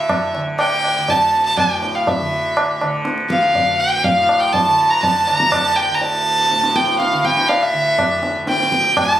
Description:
indian classical, Hindustani; 122 BPM; 4/4; straight; D raga darbari; A4 = 441 Hz
clear violin; melody; 0.0-9.2 s; E5 to Bb5; -15 LUFS; equal
tanpura; drone; 0.0-9.2 s; D2 to D3; -24 LUFS; right 1 dB
tabla; percussion; 0.1-9.1 s; -22 LUFS; equal
moderate recital hall reverb, RT60 1.3 s; recorded on a phone in the room, studio ambience, compression; -14 LUFS; side -12 dB against mid
0.0-9.2 A section
| 0.10 0.59 1.08 1.58 | 2.07 2.57 3.06 3.55 | 4.05 4.54 5.03 5.52 | 6.02 6.51 7.00 7.49 | 7.98 8.47 8.96

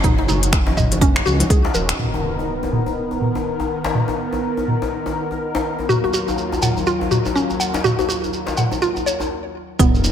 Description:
afro house; 123 BPM; 4/4; swing 59% on 16ths; A4 = 440 Hz
warm analog pad; sustained chords; 0.0-10.1 s; Eb2 to A#4; -24 LUFS; equal; chorus, vintage 12-bit sampler grit, sidechain pumping
mallet-like synth pluck; arpeggios; 0.0-1.9, 5.9-9.9 s; B3 to Gb5; -22 LUFS; equal; chorus, sidechain pumping, tape echo
dark detuned saw bass; bass; 0.0-1.9, 9.8-10.1 s; Eb1 to Db2; -22 LUFS; equal; sidechain pumping
afro-pop drum kit; drums; 0.0-9.9 s; finger snaps, hi-hat, toms; -22 LUFS; right 1 dB; low-pass filter on hats, low-pass filter on toms, low-pass filter on snare, low-pass filter on room
electronic kick drum; drums; 0.0-1.6, 9.8-9.9 s; -17 LUFS; equal; overdrive
congas; percussion; 0.0-1.9 s; -28 LUFS; right 2 dB
shekere; percussion; 0.0-2.0, 5.9-10.1 s; -28 LUFS; right 3 dB
djembe; percussion; 0.2-10.1 s; -26 LUFS; left 3 dB
impact and sub drop; sound effects; 2.0-3.9, 9.8-10.1 s; -26 LUFS; equal
light reverb, small room ambience; -17 LUFS; side -9 dB against mid
0.0-2.0 A section; 2.0-9.8 B section
impact 2.0-3.9, 9.8-10.1; stop 9.3-9.8
0.0 Ebm7; 2.0 Bmaj7/D#; 5.9 Gbmaj7/Eb
| 0.04 0.53 1.02 1.50 | 1.99 2.48 2.97 3.46 | 3.94 4.43 4.92 5.41 | 5.89 6.38 6.87 7.36 | 7.84 8.33 8.82 9.31 | 9.80

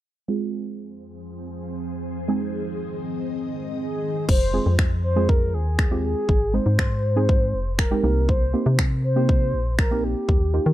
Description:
dance-pop; 120 BPM; 4/4; straight; F minor; A4 = 440 Hz
deep mellow chord stab; accompaniment; 0.3-10.7 s; Ab3 to Ab4; -26 LUFS; right 3 dB; chorus, sidechain pumping, low-pass filter
ethereal airy pad; sustained chords; 1.0-4.3 s; F2 to Eb5; -31 LUFS; left 1 dB; ensemble chorus, built-in reverb, phaser, sidechain pumping, low-pass filter
mellow horn-like synth lead; melody; 3.8-10.7 s; G4 to C5; -26 LUFS; equal; chorus, tape echo
organ-like FM bass; bass; 4.3-10.7 s; F1 to Eb3; -22 LUFS; equal; sidechain pumping
pop drum kit; drums; 4.3-10.4 s; crash cymbal, finger snaps, kick drum; -20 LUFS; equal
little or no reverb; dry, close 1970s-style studio recording; -20 LUFS; side -14 dB against mid
0.3-4.3 A section; 4.3-10.7 B section
filter sweep 0.3-4.3
0.3 Fm; 2.3 Ab; 4.0 Fm; 8.0 Cm7
| 0.29 0.79 1.29 1.79 | 2.29 2.79 3.29 3.79 | 4.29 4.79 5.29 5.79 | 6.29 6.79 7.29 7.79 | 8.29 8.79 9.29 9.79 | 10.29

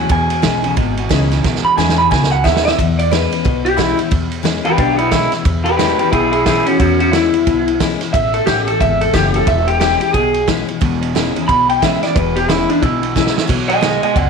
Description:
rockabilly; 179 BPM; 4/4; swing 61% on 8ths; E major; A4 = 440 Hz
electric guitar through a small old amp; melody; 0.0-14.3 s; B3 to B5; -15 LUFS; equal; spring reverb, tape echo
picked steel-string acoustic guitar; accompaniment; 0.0-14.3 s; E2 to F#4; -20 LUFS; left 12 dB
electric guitar through a small old amp; riff; 0.0-2.8, 10.8-14.3 s; E2 to G#3; -23 LUFS; right 12 dB
upright bass; bass; 0.0-14.3 s; E1 to E2; -20 LUFS; equal
vintage drum kit; drums; 0.1-14.3 s; crash cymbal, kick drum, ride cymbal, snare drum; -19 LUFS; right 4 dB
little or no reverb; 1960s-style stereo with parts hard left and right; -12 LUFS; side -5 dB against mid
0.0-2.8 A section; 2.8-14.3 B section
drum fill 1.4-2.8, 13.2-13.5; clean electric guitar solo 2.8-14.3
0.1 E6; 8.1 A6; 9.5 E6; 13.5 B6
| 0.11 0.44 0.78 1.11 | 1.45 1.78 2.12 2.45 | 2.79 3.12 3.45 3.79 | 4.12 4.46 4.79 5.13 | 5.46 5.79 6.13 6.46 | 6.80 7.13 7.47 7.80 | 8.14 8.47 8.81 9.14 | 9.48 9.81 10.15 10.48 | 10.82 11.15 11.49 11.82 | 12.16 12.49 12.83 13.16 | 13.49 13.83 14.16

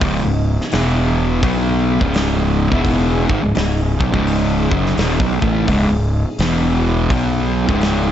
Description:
stoner and doom metal; 85 BPM; 4/4; swing 63% on 8ths; C# minor; A4 = 440 Hz
soft string machine; sustained chords; 0.0-8.1 s; C#3 to G#4; -28 LUFS; right 1 dB
fuzz guitar; riff; 0.0-8.1 s; C#2 to B3; -17 LUFS; equal; distortion
fuzz fingered electric bass; bass; 0.0-8.1 s; C#1 to B1; -20 LUFS; equal; overdrive
big rock drum kit; drums; 0.0-8.0 s; hi-hat, kick drum, snare drum; -22 LUFS; equal
light reverb; dark, warm production, nothing above 8.0 kHz; -14 LUFS; side -10 dB against mid
0.0-8.1 A section
0.0 C#5; 0.7 E5; 1.4 C#m; 6.4 E5; 7.1 C#5
| 0.02 0.72 1.43 2.14 | 2.85 3.56 4.27 4.98 | 5.69 6.40 7.11 7.82

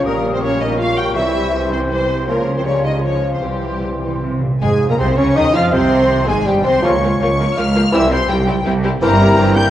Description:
classical, dramatic, fast romantic movement for symphony orchestra; 162 BPM; 3/4; rubato; A4 = 440 Hz
warm symphonic violin section; melody; 0.0-9.7 s; Bb3 to G6; -24 LUFS; left 4 dB
dark clarinet; second line; 0.0-9.7 s; G4 to G5; -23 LUFS; equal
large flute ensemble; second line; 0.0-9.2 s; Bb4 to F6; -28 LUFS; left 2 dB
rich symphonic violin section; second line; 0.0-9.7 s; E4 to G5; -24 LUFS; left 1 dB
clear studio viola section; accompaniment; 0.0-9.7 s; E3 to F4; -25 LUFS; equal
dark bassoon; accompaniment; 0.0-9.1 s; E3 to F4; -22 LUFS; right 1 dB
warm French horn section; sustained chords; 0.0-9.7 s; G3 to G4; -22 LUFS; left 1 dB
concert harp; arpeggios; 0.0-9.7 s; G2 to G5; -28 LUFS; left 4 dB
rich symphonic cello section; bass; 0.0-9.7 s; C2 to F3; -21 LUFS; right 1 dB
rich symphonic double bass section; bass; 0.0-9.7 s; G1 to F2; -22 LUFS; right 2 dB
timpani; percussion; 1.2-5.1 s; F2 to C3; -24 LUFS; right 1 dB
clear trombone section; sustained chords; 4.6-9.7 s; G2 to G3; -24 LUFS; right 2 dB
wet scoring stage reverb, RT60 1.7 s; worn, warbling old tape, cassette tape, warbly pitch drift; -13 LUFS; side -12 dB against mid
0.0-4.6 A section; 4.6-9.7 B section
timpani fill 3.4-4.6
0.1 Gdim/Bb; 1.2 C; 2.3 Bbm/Db; 3.4 C; 4.6 Fm/Ab; 5.7 Cm; 6.8 Bbm/Db; 7.9 C; 9.0 C7/G
| 0.07 0.42 0.79 | 1.16 1.53 1.90 | 2.28 2.65 3.03 | 3.43 3.83 4.23 | 4.62 4.99 5.36 | 5.73 6.10 6.46 | 6.83 7.20 7.57 | 7.93 8.29 8.65 | 9.02 9.39

